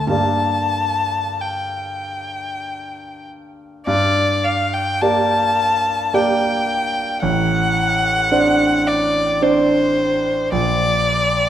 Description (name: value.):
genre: classical, romantic duo for violin and grand piano.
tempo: 46-56 BPM.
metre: 3/4.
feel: rubato.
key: G minor.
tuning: A4 = 440 Hz.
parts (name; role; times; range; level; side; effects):
warm violin; melody; 0.0-11.5 s; C5 to A5; -18 LUFS; left 2 dB; none.
clear concert grand piano; accompaniment; 0.0-11.5 s; A1 to D5; -20 LUFS; right 2 dB; none.
room: wet recital hall reverb, RT60 1.6 s.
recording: none.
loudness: -16 LUFS.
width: side -10 dB against mid.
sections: 0.0-3.9 A section; 3.9-11.5 A section.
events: none.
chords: 0.1 Gm; 7.2 D7/A; 10.5 Gm/Bb (rootless).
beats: | 0.11 1.40 2.64 | 3.86 5.00 6.14 | 7.21 8.30 9.41 | 10.51.